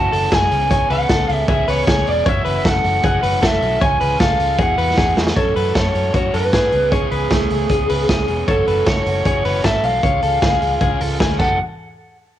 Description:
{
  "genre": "jangly indie pop",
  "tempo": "154 BPM",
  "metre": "4/4",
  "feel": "straight",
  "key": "F# minor",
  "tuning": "A4 = 440 Hz",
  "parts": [
    { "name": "lead guitar through a small cranked amp", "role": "melody", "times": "0.0-11.6 s", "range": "G#4 to A5", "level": "-19 LUFS", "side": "equal", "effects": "overdrive, cassette tape" },
    { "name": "raw garage guitar", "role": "accompaniment", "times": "0.0-11.6 s", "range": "F#2 to G#4", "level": "-26 LUFS", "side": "right 10 dB", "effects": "overdrive, cassette tape" },
    { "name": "direct-recorded clean electric guitar", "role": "arpeggios", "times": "0.0-11.6 s", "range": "A3 to C#5", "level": "-23 LUFS", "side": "left 8 dB", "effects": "cassette tape" },
    { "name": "vintage muted fingered electric bass", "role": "bass", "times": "0.0-11.6 s", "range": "E1 to G#2", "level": "-23 LUFS", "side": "equal", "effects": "none" },
    { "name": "raw garage drum kit", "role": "drums", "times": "0.1-11.5 s", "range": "crash cymbal, hi-hat, kick drum, snare drum", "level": "-20 LUFS", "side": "equal", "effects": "cassette tape" }
  ],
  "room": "small room ambience",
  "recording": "home recording on cassette",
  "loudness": "-14 LUFS",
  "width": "side -12 dB against mid",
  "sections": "0.0-5.4 A section; 5.4-11.6 B section",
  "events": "drum fill 5.0-5.4",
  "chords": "0.0 F#m7; 0.5 C#m7; 2.3 F#m7; 3.8 C#; 4.6 Eadd9; 5.4 F#m7; 6.7 C#m7; 8.5 F#m7; 10.0 C#; 11.4 F#m7; 11.6 N.C."
}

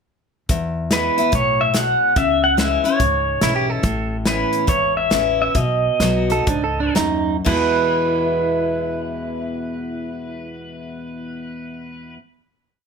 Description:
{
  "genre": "honky-tonk and classic country",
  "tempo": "115-144 BPM",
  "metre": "4/4",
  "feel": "swing 64% on 8ths",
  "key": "E major",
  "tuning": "A4 = 440 Hz",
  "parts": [
    { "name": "picked steel-string acoustic guitar", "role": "accompaniment", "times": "0.5-12.2 s", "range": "E2 to F#4", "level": "-23 LUFS", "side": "left 2 dB", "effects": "none" },
    { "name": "upright bass", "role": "bass", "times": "0.5-12.1 s", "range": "G#1 to E2", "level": "-26 LUFS", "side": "equal", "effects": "none" },
    { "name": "natural country drum kit", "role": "drums", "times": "0.5-7.6 s", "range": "crash cymbal, hi-hat, kick drum, snare drum", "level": "-23 LUFS", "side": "equal", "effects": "none" },
    { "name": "pedal steel guitar", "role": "melody", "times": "0.9-12.1 s", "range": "B4 to F#5", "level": "-20 LUFS", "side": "equal", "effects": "plate reverb" },
    { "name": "clean electric guitar", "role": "second line", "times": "3.4-12.1 s", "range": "D4 to A4", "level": "-24 LUFS", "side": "right 7 dB", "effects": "tape echo" }
  ],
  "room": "moderate studio reverb, RT60 0.7 s",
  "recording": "none",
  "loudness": "-16 LUFS",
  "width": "side -6 dB against mid",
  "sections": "0.5-7.5 interlude; 7.5-11.6 final chord",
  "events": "slowing down 3.8-7.5",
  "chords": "0.5 E; 2.2 C#m; 3.8 Aadd9; 5.6 B; 7.5 E"
}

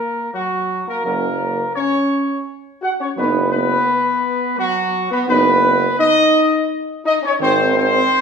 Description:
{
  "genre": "classical",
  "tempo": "85 BPM",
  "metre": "3/4",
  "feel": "straight",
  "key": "unclear",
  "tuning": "A4 = 440 Hz",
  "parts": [
    { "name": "dark trumpet section", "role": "melody", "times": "0.0-8.2 s", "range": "Gb4 to Gb5", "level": "-17 LUFS", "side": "right 1 dB", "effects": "none" },
    { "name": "warm French horn section", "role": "sustained chords", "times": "0.0-8.2 s", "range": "Gb3 to Gb4", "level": "-21 LUFS", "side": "left 3 dB", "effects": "none" },
    { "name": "mellow trombone section", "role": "sustained chords", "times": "1.0-7.7 s", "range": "Eb3 to D#4", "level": "-26 LUFS", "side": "right 5 dB", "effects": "none" },
    { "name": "clear tuba", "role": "bass", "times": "1.0-8.0 s", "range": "F#1 to Ab1", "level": "-21 LUFS", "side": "right 4 dB", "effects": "none" }
  ],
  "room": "wet recital hall reverb, RT60 1.4 s",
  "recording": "minimal, uncompressed stereo recording",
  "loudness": "-15 LUFS",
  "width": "side -6 dB against mid",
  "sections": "0.0-8.2 A section",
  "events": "none",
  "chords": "0.0 Gb; 3.2 B/F#; 7.4 Ab"
}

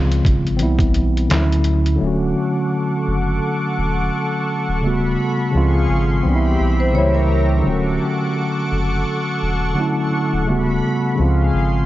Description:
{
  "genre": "lo-fi hip hop",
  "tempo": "85 BPM",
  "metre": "4/4",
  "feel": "swing 57% on 16ths",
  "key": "D major",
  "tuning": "A4 = 436 Hz",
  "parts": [
    { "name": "bright tine electric piano", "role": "accompaniment", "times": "0.0-11.9 s", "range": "C#3 to F#4", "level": "-19 LUFS", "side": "equal", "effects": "medium stereo tremolo, cassette tape" },
    { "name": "soft dub sub bass", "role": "bass", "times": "0.0-11.9 s", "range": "D1 to D2", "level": "-19 LUFS", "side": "equal", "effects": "none" },
    { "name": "trip hop sampler-style drum kit", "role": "drums", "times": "0.1-2.0 s", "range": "handclaps, hi-hat, kick drum, snare drum", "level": "-20 LUFS", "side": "equal", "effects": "none" },
    { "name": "lush unison pad", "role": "sustained chords", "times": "2.0-11.9 s", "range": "G4 to D6", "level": "-24 LUFS", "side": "equal", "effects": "chorus" },
    { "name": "vibraphone with medium mallets", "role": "second line", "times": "6.8-7.6 s", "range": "A#4 to C#5", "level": "-23 LUFS", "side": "equal", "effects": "analog delay" }
  ],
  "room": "light reverb",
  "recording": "cassette tape, nothing above 7.8 kHz",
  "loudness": "-16 LUFS",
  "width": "side -15 dB against mid",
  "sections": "0.0-2.0 A section; 2.0-11.9 B section",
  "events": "none",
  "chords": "0.0 C#maj7; 0.6 Cmaj7; 1.3 Dmaj9; 2.0 Dmaj7; 4.8 Gmaj9#11/D; 5.5 C#maj7; 6.2 Cmaj7; 7.0 C#dim7; 7.7 Dmaj7; 10.5 Gmaj9#11/D; 11.2 C#maj7"
}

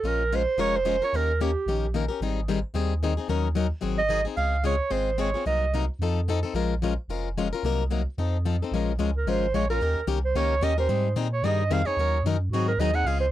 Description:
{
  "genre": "acoustic string swing (jazz manouche)",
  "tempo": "221 BPM",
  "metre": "4/4",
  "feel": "swing 57% on 8ths",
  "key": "Bb minor",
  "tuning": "A4 = 441 Hz",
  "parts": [
    { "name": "breathy clarinet", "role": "melody", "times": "0.0-1.9, 4.0-5.9, 9.2-13.3 s", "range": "Gb4 to Gb5", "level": "-26 LUFS", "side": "right 4 dB", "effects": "none" },
    { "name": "picked plugged-in swing-style acoustic guitar", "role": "accompaniment", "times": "0.0-13.3 s", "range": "C3 to Bb4", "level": "-28 LUFS", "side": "left 7 dB", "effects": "none" },
    { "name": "warm sub bass", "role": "bass", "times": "0.0-13.3 s", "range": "F1 to Bb2", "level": "-27 LUFS", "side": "right 1 dB", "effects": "none" }
  ],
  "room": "light reverb",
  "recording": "dry, close 1970s-style studio recording",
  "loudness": "-23 LUFS",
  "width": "side -13 dB against mid",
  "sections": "0.0-8.7 A section; 8.7-13.3 B section",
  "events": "clarinet solo 8.7-13.3",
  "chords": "0.0 Bbm7; 1.1 Eb7; 2.2 Abmaj7; 3.3 Ebm7; 3.8 Ab7; 4.4 Dbmaj7; 5.5 Cm7b5; 6.0 F7; 6.5 Bbm7; 7.6 Cm7b5; 8.2 F7; 8.7 Bbm7; 9.8 Eb7; 10.9 Abmaj9; 12.0 Ebm7; 12.5 Ab7"
}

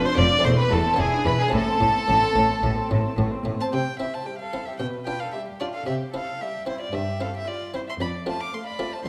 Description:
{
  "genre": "classical, baroque-style concerto movement with solo episodes",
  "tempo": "112 BPM",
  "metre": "4/4",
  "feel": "straight",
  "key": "A minor, C major from 3.7 s",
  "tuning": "A4 = 440 Hz",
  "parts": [
    { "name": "rich violin", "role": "melody", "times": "0.0-9.1 s", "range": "G#4 to D6", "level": "-29 LUFS", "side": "equal", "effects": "none" },
    { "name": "warm chamber violin section", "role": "second line", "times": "0.0-9.1 s", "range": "E4 to F5", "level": "-32 LUFS", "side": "equal", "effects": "none" },
    { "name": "buff-stop harpsichord", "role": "accompaniment", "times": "0.0-9.1 s", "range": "E2 to F4", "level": "-34 LUFS", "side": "equal", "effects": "none" },
    { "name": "dark chamber viola section", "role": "accompaniment", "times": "0.0-8.9 s", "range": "G3 to F4", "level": "-35 LUFS", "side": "equal", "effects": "none" },
    { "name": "rich chamber violin section", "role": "melody", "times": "0.1-8.9 s", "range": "C4 to D6", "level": "-31 LUFS", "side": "equal", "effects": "none" },
    { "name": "rich chamber cello section", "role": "bass", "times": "0.2-9.1 s", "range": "E2 to C3", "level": "-30 LUFS", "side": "equal", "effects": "none" },
    { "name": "rich chamber double bass section", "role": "bass", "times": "0.2-3.5 s", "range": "E1 to A1", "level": "-29 LUFS", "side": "equal", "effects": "none" }
  ],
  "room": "wet recital hall reverb, RT60 1.5 s",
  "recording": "none",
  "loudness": "-24 LUFS",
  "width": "mono",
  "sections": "0.0-3.7 A section; 3.7-9.1 B section",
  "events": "none",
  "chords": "0.5 Am/E; 1.0 E7; 1.5 Am; 3.7 C; 4.8 G7/B; 5.9 C; 8.0 F"
}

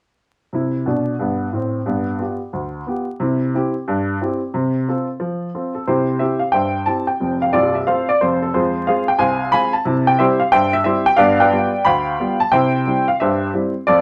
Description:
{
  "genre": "jazz, stride piano",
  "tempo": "180 BPM",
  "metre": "4/4",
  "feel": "swing 65% on 8ths",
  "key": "C major",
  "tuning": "A4 = 440 Hz",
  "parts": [
    { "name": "warm upright piano", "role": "solo", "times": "0.5-14.0 s", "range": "C1 to B5", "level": "-18 LUFS", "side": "equal", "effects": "none" }
  ],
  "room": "moderate small room reverb, RT60 0.6 s",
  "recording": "vinyl crackle",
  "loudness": "-18 LUFS",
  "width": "mono",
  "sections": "0.5-5.9 A section; 5.9-14.0 B section",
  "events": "none",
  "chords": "0.5 C; 1.9 G7; 3.2 C; 4.5 F/C; 5.9 C; 7.2 F; 8.5 Fm; 9.9 C; 11.2 G7; 12.5 C"
}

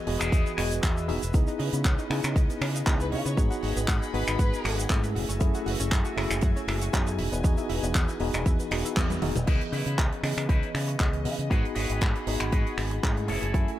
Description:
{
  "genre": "nu-disco, nu disco",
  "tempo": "118 BPM",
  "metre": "4/4",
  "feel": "swing 54% on 16ths",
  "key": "C# minor",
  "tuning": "A4 = 441 Hz",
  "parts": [
    { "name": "tine electric piano", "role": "accompaniment", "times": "0.0-13.8 s", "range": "E3 to G#5", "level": "-32 LUFS", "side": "equal", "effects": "overdrive, medium stereo tremolo, sidechain pumping, tape echo" },
    { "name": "clear studio string section", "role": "sustained chords", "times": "0.0-13.8 s", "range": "E3 to B5", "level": "-39 LUFS", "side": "left 2 dB", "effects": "sidechain pumping" },
    { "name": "electric guitar with an envelope filter", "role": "riff", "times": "0.1-1.3, 9.5-13.7 s", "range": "B3 to G#5", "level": "-37 LUFS", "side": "left 2 dB", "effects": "wide subtle chorus, vintage 12-bit sampler grit, tape echo" },
    { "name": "fingered electric bass with an envelope filter", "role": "bass", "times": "0.1-13.6 s", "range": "E1 to C#3", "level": "-30 LUFS", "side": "equal", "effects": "none" },
    { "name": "tight funk drum kit", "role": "drums", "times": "0.1-13.8 s", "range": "crash cymbal, finger snaps, handclaps, hi-hat, shaker, toms", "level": "-32 LUFS", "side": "right 1 dB", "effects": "none" },
    { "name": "electronic kick drum", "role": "drums", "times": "0.3-13.7 s", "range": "none", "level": "-25 LUFS", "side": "equal", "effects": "none" },
    { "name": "analog pluck", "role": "arpeggios", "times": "1.3-9.4 s", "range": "B3 to B4", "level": "-39 LUFS", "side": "right 2 dB", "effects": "chorus, sidechain pumping, digital delay" },
    { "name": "warm studio violin section", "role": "melody", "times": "3.0-4.8 s", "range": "B4 to C#5", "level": "-36 LUFS", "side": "left 2 dB", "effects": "digital delay" }
  ],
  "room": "small room ambience",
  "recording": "none",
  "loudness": "-24 LUFS",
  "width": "side -13 dB against mid",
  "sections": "0.0-9.5 A section; 9.5-13.8 B section",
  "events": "drop 0.0-9.5; clean electric guitar fill 0.3-1.3; drum fill 9.0-9.5; band accent 9.0",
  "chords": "0.0 Emaj7; 1.3 C#m9; 3.4 G#m7; 5.2 F#m9; 7.2 Emaj7; 9.5 C#m9; 11.5 G#m7; 13.3 F#m9"
}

